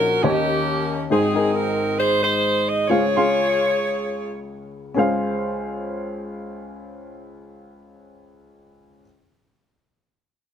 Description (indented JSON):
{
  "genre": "uptempo gospel",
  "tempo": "free time",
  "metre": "none",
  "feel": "none",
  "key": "Db major",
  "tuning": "A4 = 440 Hz",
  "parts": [
    { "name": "edgy saxophone section", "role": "melody", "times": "0.0-4.4 s", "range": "Bb3 to Eb5", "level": "-20 LUFS", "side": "equal", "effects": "none" },
    { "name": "dark upright piano", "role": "accompaniment", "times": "0.0-9.1 s", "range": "Ab1 to C6", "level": "-23 LUFS", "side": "left 2 dB", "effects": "none" }
  ],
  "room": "light reverb",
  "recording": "none",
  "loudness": "-19 LUFS",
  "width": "side -8 dB against mid",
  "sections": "0.0-5.0 A section; 5.0-9.6 B section",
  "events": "slowing down 1.1-5.0",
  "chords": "0.2 Eb7; 1.1 Ab; 2.9 Dbmaj7",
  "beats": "free time"
}